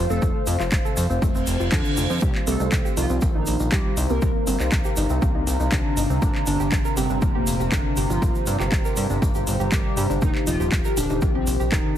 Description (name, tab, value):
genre	melodic techno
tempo	120 BPM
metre	4/4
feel	straight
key	C dorian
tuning	A4 = 436 Hz
part	soft round pluck	arpeggios	0.0-11.8 s	A3 to Bb4	-30 LUFS	right 1 dB	chorus, sidechain pumping, ping-pong delay
part	fat analog bass	bass	0.0-11.8 s	Eb1 to G2	-25 LUFS	equal	sidechain pumping
part	bowed-like drone	drone	0.4-12.0 s	C3	-34 LUFS	equal	none
part	warbly tape-like pad	texture	0.0-12.0 s	G4 to Bb5	-30 LUFS	equal	chorus, built-in reverb, phaser, sidechain pumping
part	resonant sweep polysynth	melody	0.1-11.9 s	Bb2 to Bb4	-28 LUFS	left 1 dB	chorus, sidechain pumping, dub echo
part	egg shaker	percussion	0.1-11.8 s	none	-36 LUFS	equal	none
part	electronic kick drum	drums	0.2-11.8 s	none	-23 LUFS	equal	overdrive
part	house drum kit	drums	0.5-11.8 s	handclaps, hi-hat	-30 LUFS	equal	overdrive
part	reverse cymbal	sound effects	1.4-2.2 s	none	-31 LUFS	right 4 dB	none
room	light reverb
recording	heavily compressed radio sound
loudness	-19 LUFS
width	side -10 dB against mid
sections	0.0-12.0 A section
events	reverse cymbal 1.4-2.2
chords	0.0 F; 2.2 Cm7; 6.2 Gm; 10.2 Eb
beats	| 0.22 0.72 1.22 1.72 | 2.22 2.72 3.22 3.72 | 4.22 4.72 5.22 5.72 | 6.22 6.72 7.22 7.72 | 8.22 8.72 9.22 9.72 | 10.22 10.72 11.22 11.72